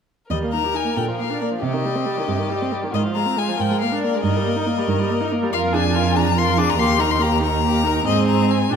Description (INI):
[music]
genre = quick classical-period movement for string quartet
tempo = 93 BPM (dotted quarters)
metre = 6/8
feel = rubato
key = Eb major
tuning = A4 = 440 Hz
[part]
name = clear violin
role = melody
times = 0.3-8.8 s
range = D5 to D6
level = -23 LUFS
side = left 9 dB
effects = none
[part]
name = warm violin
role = second line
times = 0.3-8.8 s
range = F4 to Bb4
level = -27 LUFS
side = left 2 dB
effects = none
[part]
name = warm viola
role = accompaniment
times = 0.3-8.8 s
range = C3 to G4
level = -22 LUFS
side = right 2 dB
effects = none
[part]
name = warm cello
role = bass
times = 0.3-8.8 s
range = Eb2 to C3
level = -22 LUFS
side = right 4 dB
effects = none
[sound]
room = wet scoring stage reverb, RT60 1.8 s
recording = none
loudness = -18 LUFS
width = side -7 dB against mid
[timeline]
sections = 0.3-8.8 A section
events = none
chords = 0.3 Eb; 1.0 Bb; 1.6 Cm; 2.9 Fm7/Ab; 3.6 Bb7/Ab; 4.2 Eb/G; 5.5 Bb7/F; 6.8 Eb; 8.1 Ab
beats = | 0.31 0.98 | 1.63 2.29 | 2.94 3.59 | 4.23 4.87 | 5.52 6.15 | 6.79 7.42 | 8.07 8.71